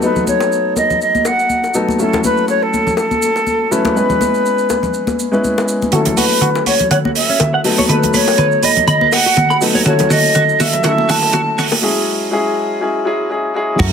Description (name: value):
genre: nu-disco, nu disco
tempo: 122 BPM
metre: 4/4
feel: swing 56% on 16ths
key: F# dorian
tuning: A4 = 441 Hz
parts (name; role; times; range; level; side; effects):
- silver concert flute; melody; 0.0-11.6 s; A4 to A5; -16 LUFS; equal; low-pass filter, ping-pong delay
- dark concert grand piano; accompaniment; 0.0-13.9 s; F#3 to B4; -18 LUFS; left 1 dB; low-pass filter, ping-pong delay
- maracas, congas and bongos; percussion; 0.0-11.8 s; none; -20 LUFS; left 2 dB; none
- direct-recorded clean electric guitar; riff; 5.9-13.9 s; C#4 to B5; -22 LUFS; right 2 dB; ensemble chorus, low-pass filter
- tight funk drum kit; drums; 5.9-13.9 s; crash cymbal, hi-hat, shaker, toms; -16 LUFS; right 1 dB; none
- picked electric bass with an envelope filter; bass; 13.8-13.9 s; F#2; -14 LUFS; equal; sidechain pumping
- kick drum; drums; 13.8-13.9 s; none; -18 LUFS; equal; none
room: moderate plate reverb, RT60 1.3 s, small room ambience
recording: high-pass filter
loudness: -12 LUFS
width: side -7 dB against mid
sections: 0.0-5.9 A section; 5.9-13.8 B section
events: build-up 5.9-13.8; drum fill 5.9-11.8; filter sweep on clean electric guitar 5.9-13.8; filter sweep on grand piano 5.9-13.8; filter sweep on flute 5.9-13.8; break 11.8-13.8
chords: 0.0 B7; 2.0 F#m7; 4.0 E6; 5.9 F#m7; 7.6 B7; 9.9 F#m7; 11.8 E6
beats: | 0.03 0.52 1.01 1.50 | 1.99 2.48 2.98 3.47 | 3.96 4.45 4.94 5.43 | 5.93 6.42 6.91 7.40 | 7.89 8.39 8.88 9.37 | 9.86 10.35 10.85 11.34 | 11.83 12.32 12.81 13.30 | 13.80